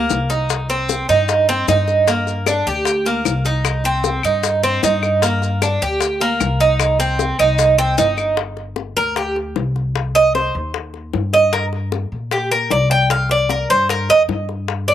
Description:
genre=latin, Cuban son and guajira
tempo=152 BPM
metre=4/4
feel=straight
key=unclear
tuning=A4 = 440 Hz
part: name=Cuban tres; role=arpeggios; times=0.0-14.9 s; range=Bb3 to G5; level=-16 LUFS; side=right 2 dB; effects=slapback echo
part: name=upright bass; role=bass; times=0.0-14.9 s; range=G1 to Bb2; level=-22 LUFS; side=left 1 dB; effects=none
part: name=bongos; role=percussion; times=0.1-14.9 s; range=none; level=-24 LUFS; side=left 11 dB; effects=slapback echo
part: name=maracas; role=percussion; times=0.1-8.4 s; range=none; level=-28 LUFS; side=left 12 dB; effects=none
part: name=claves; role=percussion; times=2.5-8.4 s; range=none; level=-25 LUFS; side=left 10 dB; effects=none
room=little or no reverb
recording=recorded outdoors, with no room sound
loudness=-15 LUFS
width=side -11 dB against mid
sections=0.0-8.4 A section; 8.4-14.9 B section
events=Cuban tres solo 8.4-14.9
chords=0.5 Cm; 2.1 Gm; 3.6 Cm; 5.2 Gm; 6.8 Cm; 8.4 G5; 10.0 Cm; 11.5 Gm; 13.1 C5

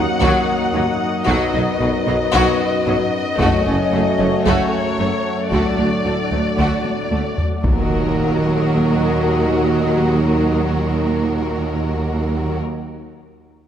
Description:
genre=cinematic, hybrid orchestral and electronic film score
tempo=113 BPM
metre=4/4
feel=straight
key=Eb minor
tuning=A4 = 440 Hz
part: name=warm symphonic violin section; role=melody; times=0.0-12.6 s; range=Bb4 to Gb5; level=-24 LUFS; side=left 4 dB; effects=none
part: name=clear studio violin section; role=second line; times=0.0-12.6 s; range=A3 to Gb4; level=-26 LUFS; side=left 2 dB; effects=none
part: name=clear symphonic viola section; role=accompaniment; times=0.0-12.6 s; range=Gb3 to A3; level=-26 LUFS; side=right 1 dB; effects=none
part: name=analog string pad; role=sustained chords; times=0.0-12.6 s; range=F#3 to Eb5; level=-26 LUFS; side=left 2 dB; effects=ensemble chorus
part: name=dark French horn section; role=sustained chords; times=0.0-12.6 s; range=Gb3 to Eb4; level=-26 LUFS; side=left 4 dB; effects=none
part: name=warm trombone section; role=sustained chords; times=0.0-12.6 s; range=Gb2 to Gb3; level=-26 LUFS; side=right 3 dB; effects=none
part: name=clear symphonic cello section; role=bass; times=0.0-12.6 s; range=D2 to B2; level=-25 LUFS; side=right 2 dB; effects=none
part: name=mellow tuba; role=bass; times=0.0-12.6 s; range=Gb1 to Eb2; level=-24 LUFS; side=right 3 dB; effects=none
part: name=rich symphonic double bass section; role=bass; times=0.0-12.6 s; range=Gb1 to Eb2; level=-25 LUFS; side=right 2 dB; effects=none
part: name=taiko ensemble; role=drums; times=0.2-8.7 s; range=none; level=-24 LUFS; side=equal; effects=none
part: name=impact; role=sound effects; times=7.6-9.8 s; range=none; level=-26 LUFS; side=equal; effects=none
room=wet scoring stage reverb, RT60 2.1 s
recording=none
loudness=-16 LUFS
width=side -9 dB against mid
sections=0.0-7.6 A section; 7.6-11.9 B section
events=drum fill 6.8-7.6; impact 7.6-9.8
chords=0.0 Ebm; 1.3 B; 3.4 Gbm; 5.5 D; 7.6 Ebm

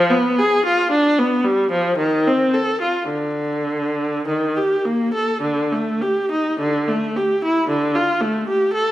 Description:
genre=classical, baroque-style suite movement for unaccompanied viola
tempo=51-57 BPM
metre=3/4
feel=rubato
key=unclear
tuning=A4 = 440 Hz
part: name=rich viola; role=solo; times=0.0-8.9 s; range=D3 to A4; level=-17 LUFS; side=equal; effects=none
room=wet recital hall reverb, RT60 1.8 s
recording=minimal, uncompressed stereo recording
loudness=-17 LUFS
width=side -14 dB against mid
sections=0.0-8.9 A section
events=none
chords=none

